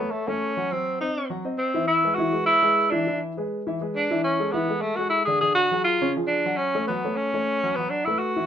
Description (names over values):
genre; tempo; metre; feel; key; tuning
jazz; 204 BPM; 4/4; straight; unclear; A4 = 440 Hz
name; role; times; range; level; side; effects
breathy tenor saxophone; melody; 0.0-8.5 s; A3 to G#4; -22 LUFS; equal; none
warm grand piano; accompaniment; 0.0-8.5 s; C#3 to F#5; -27 LUFS; left 1 dB; none
room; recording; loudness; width
moderate studio reverb, RT60 0.6 s; minimal, uncompressed stereo recording; -21 LUFS; side -9 dB against mid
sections
0.0-8.5 A section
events
none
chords
0.0 F#m; 0.7 Cdim; 1.9 E7; 4.2 Amaj9; 5.4 D; 6.0 C#; 6.6 F#m; 7.8 B5